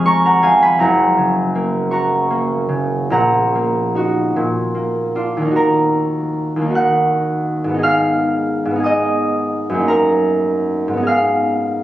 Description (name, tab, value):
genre	classical, solo harp piece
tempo	47-60 BPM (dotted quarters)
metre	6/8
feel	rubato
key	Eb minor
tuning	A4 = 439 Hz
part	concert harp	solo	0.0-11.8 s	F1 to Gb6	-14 LUFS	equal	none
room	moderate recital hall reverb, RT60 1.6 s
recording	recorded on a phone in the room, studio reverb, compression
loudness	-14 LUFS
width	side -13 dB against mid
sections	0.0-5.5 A section; 5.5-11.8 B section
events	none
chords	0.0 Db/F; 0.8 Gb; 3.1 Ebm/Bb; 4.3 Bb; 5.5 Ebm; 7.8 Abm; 9.9 Ebm/Gb; 11.1 Abm